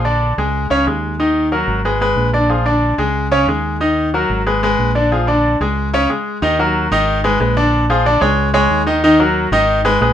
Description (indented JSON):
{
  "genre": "latin, salsa",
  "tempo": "184 BPM",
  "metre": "4/4",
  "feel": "straight",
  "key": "Eb minor",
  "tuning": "A4 = 440 Hz",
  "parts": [
    { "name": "bright concert grand piano", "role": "accompaniment", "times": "0.0-10.1 s", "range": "Db3 to Eb5", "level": "-14 LUFS", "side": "left 1 dB", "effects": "none" },
    { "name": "fingered electric bass", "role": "bass", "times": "0.0-10.1 s", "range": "Ab1 to Eb2", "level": "-19 LUFS", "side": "right 1 dB", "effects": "none" }
  ],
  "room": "moderate studio reverb, RT60 0.5 s",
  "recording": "minimal, uncompressed stereo recording",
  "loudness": "-13 LUFS",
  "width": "side -10 dB against mid",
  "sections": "0.0-6.4 A section; 6.4-10.1 B section",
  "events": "break 5.8-6.4",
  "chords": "0.0 Bb7; 0.5 Dbsus2; 1.2 Ebm; 1.8 Abm; 2.5 Bb7; 3.2 Dbsus2; 3.8 Ebm; 4.5 Abm; 5.1 Bb7; 5.8 Db5; 6.4 Ebm; 7.1 Abm; 7.7 Bb7; 8.4 Dbsus2; 9.0 Ebm",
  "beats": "0.21 0.54 0.86 | 1.19 1.52 1.84 2.17 | 2.50 2.83 3.15 3.48 | 3.81 4.13 4.46 4.79 | 5.11 5.44 5.77 6.09 | 6.42 6.75 7.07 7.40 | 7.72 8.05 8.38 8.70 | 9.03 9.35 9.68 10.01"
}